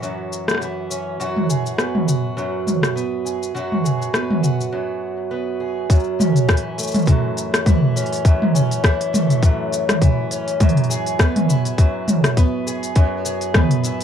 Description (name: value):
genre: folktronica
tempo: 102 BPM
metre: 4/4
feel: swing 56% on 16ths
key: F# minor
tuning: A4 = 442 Hz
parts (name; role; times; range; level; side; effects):
- fingerpicked twelve-string acoustic guitar; arpeggios; 0.0-14.0 s; F#2 to G#4; -23 LUFS; right 1 dB; tape echo
- organic electronic drum kit; drums; 0.0-14.0 s; hi-hat, rim click, shaker, toms; -18 LUFS; equal; overdrive
- electronic kick drum; drums; 5.9-13.7 s; none; -14 LUFS; left 1 dB; none
room: moderate studio reverb, RT60 0.5 s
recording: dark, warm production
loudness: -16 LUFS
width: side -8 dB against mid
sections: 0.0-5.9 A section; 5.9-14.0 B section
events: break 4.7-5.9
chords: 0.0 F#5; 1.2 F#sus24; 5.9 F#m7; 10.6 Eadd9/F#